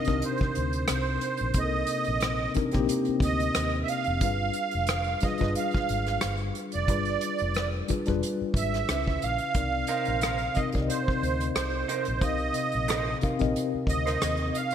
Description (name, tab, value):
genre	R&B, neo-soul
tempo	90 BPM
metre	4/4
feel	swing 53% on 16ths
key	C minor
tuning	A4 = 440 Hz
part	musette accordion	melody	0.0-14.7 s	C5 to F5	-30 LUFS	right 5 dB	none
part	mellow tine electric piano	accompaniment	0.0-14.7 s	C3 to F5	-30 LUFS	left 4 dB	medium stereo tremolo
part	unplugged drum kit	drums	0.0-14.7 s	hi-hat, kick drum, rim click	-30 LUFS	equal	gated reverb
part	vintage muted fingered electric bass	bass	0.1-14.5 s	F1 to Eb2	-31 LUFS	equal	none
part	electric guitar through a small old amp	second line	9.9-14.7 s	Eb4 to C5	-36 LUFS	right 4 dB	analog chorus, ping-pong delay
room	moderate lush hall reverb, RT60 1.8 s, small room reverb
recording	bright 1980s-style digital production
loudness	-25 LUFS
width	side -9 dB against mid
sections	0.0-14.7 A section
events	none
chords	0.0 Cm7; 4.2 G7b9; 8.9 Dbm7; 9.5 Cm7